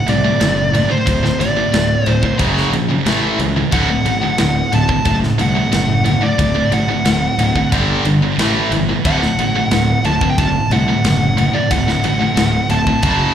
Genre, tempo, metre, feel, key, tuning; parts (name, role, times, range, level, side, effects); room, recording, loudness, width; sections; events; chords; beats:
heavy metal; 90 BPM; 4/4; straight; D major; A4 = 439 Hz
high-gain lead guitar; melody; 0.0-13.3 s; C5 to A5; -19 LUFS; equal; distortion, slapback echo, ping-pong delay
heavy high-gain guitar; riff; 0.0-13.3 s; D2 to A3; -19 LUFS; right 7 dB; distortion
tight distorted guitar; riff; 0.0-13.3 s; D2 to A3; -20 LUFS; left 9 dB; distortion, slapback echo
fuzz fingered electric bass; bass; 0.1-13.2 s; D1 to C#2; -19 LUFS; equal; overdrive
tight metal drum kit; drums; 0.1-13.2 s; kick drum, ride cymbal, snare drum; -22 LUFS; equal
little or no reverb; live gig heard through the venue's PA, club reverb; -13 LUFS; side -9 dB against mid
0.0-13.3 A section
0.0 D; 2.4 F#5; 3.1 A5; 3.7 D; 7.7 G5; 8.4 A5; 9.1 D
0.41 | 1.07 1.74 2.40 3.07 | 3.73 4.40 5.06 5.73 | 6.39 7.06 7.72 8.39 | 9.05 9.72 10.38 11.05 | 11.71 12.38 13.04